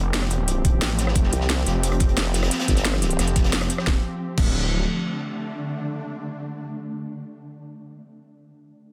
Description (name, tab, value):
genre	dark technical drum and bass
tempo	177 BPM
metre	4/4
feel	straight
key	D minor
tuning	A4 = 439 Hz
part	swarming drone	sustained chords	0.0-7.3 s	D3 to G4	-32 LUFS	equal	built-in reverb, vintage 12-bit sampler grit, sidechain pumping
part	detuned saw bass	bass	0.0-4.8 s	D1 to A1	-27 LUFS	equal	chorus
part	crunchy breakbeat drum kit	drums	0.1-3.9 s	hi-hat, snare drum	-34 LUFS	equal	high-pass filter on hats, studio ambience, high-pass filter on snare, high-pass filter on room
part	drum and bass drum kit	drums	0.1-4.5 s	crash cymbal, hi-hat, rim click, snare drum	-29 LUFS	equal	studio ambience
part	electronic kick drum	drums	0.6-4.5 s	none	-23 LUFS	equal	studio ambience
part	formant-sweep wobble bass	bass	1.3-3.2 s	F1 to C2	-25 LUFS	equal	chorus
room	light reverb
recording	dense, heavily limited modern master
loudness	-23 LUFS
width	mono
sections	0.0-3.9 A section; 3.9-6.6 B section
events	drop 0.0-3.9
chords	0.0 Fsus2; 3.9 D5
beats	0.14 0.48 0.82 | 1.16 1.50 1.83 2.17 | 2.51 2.85 3.19 3.53 | 3.87 4.21 4.55 4.88 | 5.22 5.56 5.90 6.24